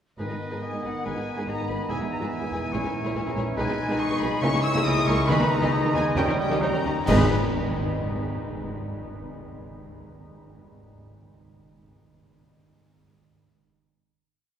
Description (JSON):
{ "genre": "classical, dramatic, fast romantic movement for symphony orchestra", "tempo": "128-144 BPM", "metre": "4/4", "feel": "rubato", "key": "G# minor", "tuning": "A4 = 435 Hz", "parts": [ { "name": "dark symphonic violin section", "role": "melody", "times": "0.2-7.3 s", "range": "D#5 to E6", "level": "-33 LUFS", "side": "left 3 dB", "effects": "none" }, { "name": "bright clarinet", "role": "second line", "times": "0.2-7.3 s", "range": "B3 to E4", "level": "-35 LUFS", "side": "right 1 dB", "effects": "none" }, { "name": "bright oboe", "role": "second line", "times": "0.2-7.3 s", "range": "G#4 to G5", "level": "-35 LUFS", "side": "right 1 dB", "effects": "none" }, { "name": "mellow flute section", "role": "second line", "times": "0.2-7.3 s", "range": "B4 to E6", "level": "-34 LUFS", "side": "left 1 dB", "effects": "none" }, { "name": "warm symphonic violin section", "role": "second line", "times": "0.2-7.3 s", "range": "B3 to D#5", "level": "-35 LUFS", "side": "left 1 dB", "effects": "none" }, { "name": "dark symphonic viola section", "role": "accompaniment", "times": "0.2-7.3 s", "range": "G#3 to E4", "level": "-32 LUFS", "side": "right 1 dB", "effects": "none" }, { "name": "mellow bassoon", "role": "accompaniment", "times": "0.2-7.3 s", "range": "D#3 to G#3", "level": "-34 LUFS", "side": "right 2 dB", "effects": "none" }, { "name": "mellow French horn section", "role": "sustained chords", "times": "0.2-7.3 s", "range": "G3 to E4", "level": "-34 LUFS", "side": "left 1 dB", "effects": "none" }, { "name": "concert harp", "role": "arpeggios", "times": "0.2-7.3 s", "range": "E2 to B5", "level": "-32 LUFS", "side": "left 3 dB", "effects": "none" }, { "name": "clear symphonic double bass section", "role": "bass", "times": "0.2-7.3 s", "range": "E1 to D#2", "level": "-33 LUFS", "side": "right 2 dB", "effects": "none" }, { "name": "rich symphonic cello section", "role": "bass", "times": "0.2-7.3 s", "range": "E2 to D#3", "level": "-33 LUFS", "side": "right 2 dB", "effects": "none" }, { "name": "timpani", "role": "percussion", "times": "0.2-0.8, 5.3-7.3 s", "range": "G#2 to D#3", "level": "-33 LUFS", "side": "equal", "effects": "none" }, { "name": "cymbal swell, clash cymbals and concert bass drum", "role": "percussion", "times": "3.6-7.9 s", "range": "none", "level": "-36 LUFS", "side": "equal", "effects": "none" } ], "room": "wet cathedral reverb, RT60 7.0 s", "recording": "recorded in a church or concert hall", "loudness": "-22 LUFS", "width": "side -9 dB against mid", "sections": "0.2-7.1 A section; 7.1-8.8 final chord", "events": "band accent 7.1-7.5", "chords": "0.2 G#m; 1.9 E; 2.7 A#m7b5; 3.6 G#m/B; 4.4 A#m7b5/C#; 5.3 G#m/D#; 6.2 D#7; 7.1 G#m" }